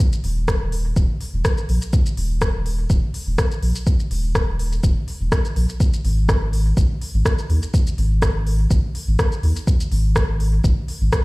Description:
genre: dub techno.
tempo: 124 BPM.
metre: 4/4.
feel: straight.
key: unclear.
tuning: A4 = 444 Hz.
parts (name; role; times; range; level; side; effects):
deep house drum kit; drums; 0.0-11.2 s; hi-hat, rim click, shaker; -27 LUFS; left 1 dB; none.
electronic kick drum; drums; 0.0-11.2 s; none; -18 LUFS; equal; none.
warm sub bass; bass; 0.2-11.1 s; Eb1 to Eb2; -19 LUFS; equal; sidechain pumping.
room: little or no reverb.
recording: played on a big sound system in a bare room, large studio reverb.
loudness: -17 LUFS.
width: side -23 dB against mid.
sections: 0.0-11.2 A section.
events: none.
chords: none.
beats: | 0.00 0.48 0.96 1.45 | 1.93 2.42 2.90 3.38 | 3.87 4.35 4.84 5.32 | 5.80 6.29 6.77 7.25 | 7.74 8.22 8.71 9.19 | 9.68 10.16 10.64 11.13.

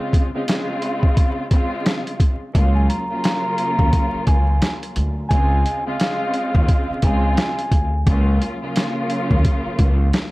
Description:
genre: hip hop, boom-bap hip-hop.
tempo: 87 BPM.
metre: 4/4.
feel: swing 61% on 16ths.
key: unclear.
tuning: A4 = 440 Hz.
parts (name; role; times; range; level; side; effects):
warm studio string section; accompaniment; 0.0-10.3 s; Db3 to F4; -24 LUFS; equal; cassette tape, high-pass filter, low-pass filter.
boom bap sampler-style drum kit; drums; 0.1-10.3 s; hi-hat, kick drum, snare drum; -18 LUFS; equal; none.
upright bass; bass; 2.5-10.1 s; Db2 to Eb2; -19 LUFS; equal; none.
trumpet with cup mute; melody; 2.7-8.0 s; F5 to Bb5; -25 LUFS; right 1 dB; high-pass filter, low-pass filter, tape echo.
room: little or no reverb.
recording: dry, gritty hardware recording, vinyl crackle.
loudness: -17 LUFS.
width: side -20 dB against mid.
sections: 0.0-2.5 A section; 2.5-10.3 B section.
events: break 0.0-2.5.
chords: 0.0 Dbmaj7; 2.5 Gbmaj7/Db; 5.3 Dbmaj7; 8.1 Gbmaj7/Db.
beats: 0.48 1.17 1.86 | 2.55 3.24 3.93 4.62 | 5.31 6.00 6.69 7.38 | 8.07 8.76 9.45 10.14.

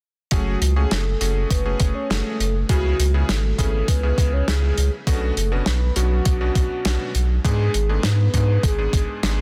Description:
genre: synthwave.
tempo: 101 BPM.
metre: 4/4.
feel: straight.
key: F# minor.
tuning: A4 = 440 Hz.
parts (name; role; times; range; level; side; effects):
soft octave-layered synth lead; melody; 0.3-9.4 s; F#4 to C#5; -30 LUFS; equal; chorus, phaser, delay.
bright electric grand piano; stabs; 0.3-9.4 s; G#2 to G#4; -32 LUFS; equal; none.
round analog bass; bass; 0.3-9.4 s; F#1 to G#2; -23 LUFS; equal; tube saturation.
electronic kick drum; drums; 0.3-9.1 s; none; -23 LUFS; equal; none.
warm soul drum kit; drums; 0.3-9.3 s; hi-hat, snare drum; -29 LUFS; equal; none.
room: light reverb, small room ambience.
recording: dense, heavily limited modern master.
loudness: -20 LUFS.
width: mono.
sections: 0.3-9.4 A section.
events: none.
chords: 0.3 F#madd9; 2.7 C#m7; 5.1 Bmadd9; 7.4 G#dim.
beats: | 0.32 0.91 1.51 2.10 | 2.69 3.29 3.88 4.48 | 5.07 5.66 6.26 6.85 | 7.45 8.04 8.63 9.23.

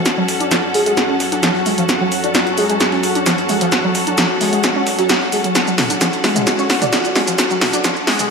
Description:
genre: driving peak-time techno.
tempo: 131 BPM.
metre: 4/4.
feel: straight.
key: F# minor.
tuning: A4 = 440 Hz.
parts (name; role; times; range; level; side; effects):
deep dark ambient pad; drone; 0.0-8.3 s; F#3 to F#4; -22 LUFS; left 1 dB; chorus, built-in reverb.
bright symphonic string section; texture; 0.0-8.3 s; C#4 to F#5; -23 LUFS; equal; none.
breakbeat sampler-style drum kit; drums; 0.1-8.2 s; hi-hat, shaker, snare drum; -28 LUFS; right 1 dB; none.
punchy analog drum machine; drums; 0.1-8.3 s; hi-hat, shaker, snare drum, toms; -17 LUFS; equal; none.
overdriven synth lead; riff; 0.2-8.2 s; E#3 to D4; -19 LUFS; equal; distortion, tube saturation, analog chorus, tape echo.
room: wet lush hall reverb, RT60 1.7 s.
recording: dreamy mix soaked in reverb, high-pass filter.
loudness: -14 LUFS.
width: side -5 dB against mid.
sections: 0.0-8.3 A section.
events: build-up 0.0-8.3; drum fill 0.0-8.3; filter sweep on analog synth lead 0.0-8.3.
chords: 0.0 F#m.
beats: | 0.06 0.52 0.97 1.43 | 1.89 2.35 2.81 3.26 | 3.72 4.18 4.64 5.09 | 5.55 6.01 6.47 6.93 | 7.38 7.84 8.30.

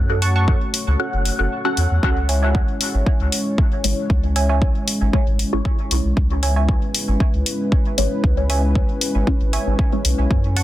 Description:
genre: dub techno.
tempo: 116 BPM.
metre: 4/4.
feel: straight.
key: C# minor.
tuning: A4 = 440 Hz.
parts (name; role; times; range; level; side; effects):
dark analog pad; sustained chords; 0.0-10.6 s; G#3 to C#5; -26 LUFS; left 1 dB; chorus, sidechain pumping.
soft dub sub bass; bass; 0.0-10.6 s; F#1 to F#2; -19 LUFS; equal; sidechain pumping.
filtered dub chord stab; riff; 0.2-10.6 s; C#5 to C#6; -28 LUFS; right 4 dB; chorus, sidechain pumping, dub echo.
electronic hi-hat; drums; 0.2-10.6 s; none; -23 LUFS; left 2 dB; none.
electronic kick drum; drums; 0.5-10.4 s; none; -18 LUFS; equal; none.
filtered dub chord stab; stabs; 1.0-10.0 s; G#3 to F#5; -26 LUFS; left 1 dB; phaser, sidechain pumping, dub echo.
room: light reverb, digital ambience.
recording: dense, heavily limited modern master.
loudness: -16 LUFS.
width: side -14 dB against mid.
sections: 0.0-2.0 A section; 2.0-10.6 A section.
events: filter sweep on synth stab 0.0-2.0, 2.0-10.6; kick drops out 1.0-2.0.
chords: 0.0 F#m; 2.0 C#m.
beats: 0.48 1.00 1.51 | 2.03 2.55 3.06 3.58 | 4.10 4.62 5.13 5.65 | 6.17 6.69 7.20 7.72 | 8.24 8.76 9.27 9.79 | 10.31.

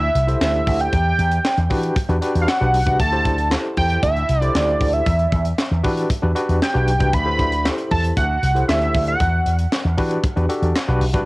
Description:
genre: early-eighties boogie funk.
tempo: 116 BPM.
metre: 4/4.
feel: straight.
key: unclear.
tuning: A4 = 442 Hz.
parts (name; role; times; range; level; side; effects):
fat analog lead; melody; 0.0-9.6 s; D5 to B5; -21 LUFS; right 1 dB; phaser, cassette tape, plate reverb, tape echo.
slap bass with an envelope filter; bass; 0.0-11.2 s; B1 to E3; -20 LUFS; equal; none.
tight funk drum kit; drums; 0.2-11.3 s; handclaps, hi-hat, kick drum, snare drum; -23 LUFS; equal; cassette tape.
overdriven tine electric piano; accompaniment; 0.3-11.3 s; D4 to C5; -24 LUFS; left 1 dB; fast tremolo, cassette tape, plate reverb.
room: light reverb.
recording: home recording on cassette.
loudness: -16 LUFS.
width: side -21 dB against mid.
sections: 0.0-11.3 A section.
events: none.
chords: 0.0 D9sus4; 0.9 Em9; 3.0 D9sus4; 5.1 Em9; 7.1 D9sus4; 9.2 Em9.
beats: 0.41 | 0.93 1.44 1.96 2.48 | 3.00 3.51 4.03 4.55 | 5.07 5.58 6.10 6.62 | 7.13 7.65 8.17 8.69 | 9.20 9.72 10.24 10.75.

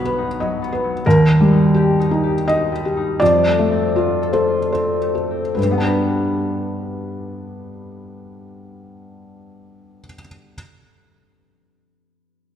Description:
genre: cinematic, emotional film score for orchestra.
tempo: 70-90 BPM.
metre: 3/4.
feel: rubato.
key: G mixolydian.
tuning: A4 = 441 Hz.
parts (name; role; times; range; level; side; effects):
felt-muted upright piano; accompaniment; 0.0-10.6 s; B1 to D#5; -17 LUFS; equal; none.
concert harp; arpeggios; 0.0-10.3 s; G2 to B4; -23 LUFS; left 4 dB; none.
room: moderate scoring stage reverb, RT60 2.1 s.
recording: none.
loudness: -15 LUFS.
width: side -9 dB against mid.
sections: 0.0-5.6 A section; 5.6-10.5 B section.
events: slowing down 0.1-5.6.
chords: 0.0 B; 1.1 Eb; 3.2 F; 5.6 G.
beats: 0.39 | 1.05 1.74 2.48 | 3.21 3.95 4.74 | 5.57 6.40 7.22 | 8.05 8.87 9.70.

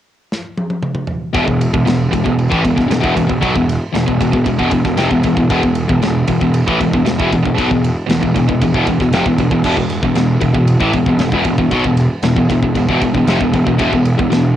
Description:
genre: heavy metal.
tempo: 116 BPM.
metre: 4/4.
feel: straight.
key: unclear.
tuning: A4 = 440 Hz.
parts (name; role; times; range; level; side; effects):
modern studio drum kit; drums; 0.3-14.4 s; crash cymbal, kick drum, ride cymbal, snare drum, toms; -21 LUFS; equal; cassette tape.
distorted electric guitar; riff; 1.3-14.5 s; E2 to F#3; -16 LUFS; left 6 dB; overdrive, cassette tape.
fuzz picked electric bass; bass; 1.3-14.6 s; E1 to B1; -18 LUFS; equal; overdrive.
tight distorted guitar; riff; 1.4-14.5 s; E2 to F#3; -17 LUFS; right 7 dB; distortion, cassette tape.
room: small room ambience.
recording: home recording on cassette.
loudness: -12 LUFS.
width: side -11 dB against mid.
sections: 0.0-1.3 A section; 1.3-14.6 B section.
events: drum fill 0.3-1.3.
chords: 0.0 N.C.; 1.3 E5.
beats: 0.28 0.81 | 1.33 1.85 2.37 2.89 | 3.41 3.93 4.45 4.97 | 5.49 6.01 6.53 7.04 | 7.56 8.08 8.60 9.12 | 9.64 10.15 10.67 11.19 | 11.71 12.23 12.75 13.27 | 13.79 14.32.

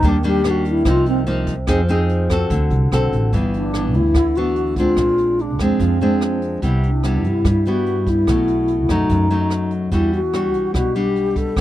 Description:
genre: bossa nova.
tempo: 146 BPM.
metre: 4/4.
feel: straight.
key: G major from 3.3 s.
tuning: A4 = 440 Hz.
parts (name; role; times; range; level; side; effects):
mellow hollow alto flute; melody; 0.0-11.6 s; C4 to A4; -19 LUFS; left 1 dB; none.
nylon-string guitar; accompaniment; 0.0-11.6 s; F#2 to A4; -20 LUFS; left 1 dB; none.
upright bass; bass; 0.0-11.6 s; G1 to G2; -21 LUFS; equal; none.
jazz brush drum kit; drums; 0.0-11.6 s; hi-hat, kick drum, rim click; -25 LUFS; right 1 dB; none.
room: little or no reverb.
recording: dry, close 1970s-style studio recording.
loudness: -16 LUFS.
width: side -14 dB against mid.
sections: 0.0-3.3 A section; 3.3-11.6 B section.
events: alto flute solo 0.0-3.3.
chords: 0.0 Ebmaj7; 0.9 Cm7; 1.7 Fm7; 2.5 D7; 3.3 G6; 5.0 Bb9; 6.6 Cmaj7; 8.3 B7; 9.9 Em9.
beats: | 0.03 0.45 0.86 1.27 | 1.68 2.09 2.50 2.91 | 3.33 3.74 4.15 4.56 | 4.97 5.38 5.80 6.21 | 6.62 7.03 7.45 7.86 | 8.27 8.68 9.09 9.51 | 9.92 10.33 10.74 11.15 | 11.57.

